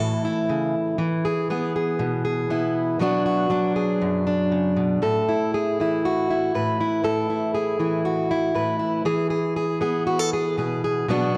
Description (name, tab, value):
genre	highlife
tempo	119 BPM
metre	4/4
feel	straight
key	unclear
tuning	A4 = 440 Hz
part	fingerpicked plugged-in steel-string acoustic guitar	solo	0.0-11.4 s	F#2 to B4	-23 LUFS	equal	none
room	wet echo chamber reverb, RT60 2.5 s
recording	none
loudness	-23 LUFS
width	mono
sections	0.0-5.0 A section; 5.0-11.4 B section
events	none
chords	0.0 A; 1.0 E; 3.0 Bm; 5.0 Asus2; 9.1 E